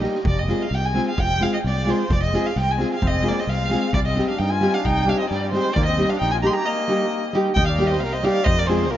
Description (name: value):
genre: balkan folk, Balkan wedding band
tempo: 132 BPM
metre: 2/4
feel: straight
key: unclear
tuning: A4 = 438 Hz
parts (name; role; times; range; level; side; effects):
- nylon-string guitar; accompaniment; 0.0-8.8 s; G3 to Ab4; -23 LUFS; equal; none
- fingered electric bass; bass; 0.0-9.0 s; F1 to G2; -23 LUFS; equal; none
- street-band drum kit; percussion; 0.0-9.0 s; kick drum, snare drum; -27 LUFS; equal; none
- rich violin; melody; 0.3-9.0 s; Bb4 to C6; -24 LUFS; equal; none
- mellow trumpet; second line; 3.0-9.0 s; G3 to Eb5; -30 LUFS; left 3 dB; none
room: moderate cathedral reverb, RT60 6.3 s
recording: in a vast, echoing space, nothing above 7.5 kHz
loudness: -18 LUFS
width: side -12 dB against mid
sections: 0.2-7.6 A section; 7.6-9.0 B section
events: speeding up 0.0-9.0; break 6.7-7.6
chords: 0.2 Fm; 3.9 Cm; 5.8 Eb; 8.5 Fm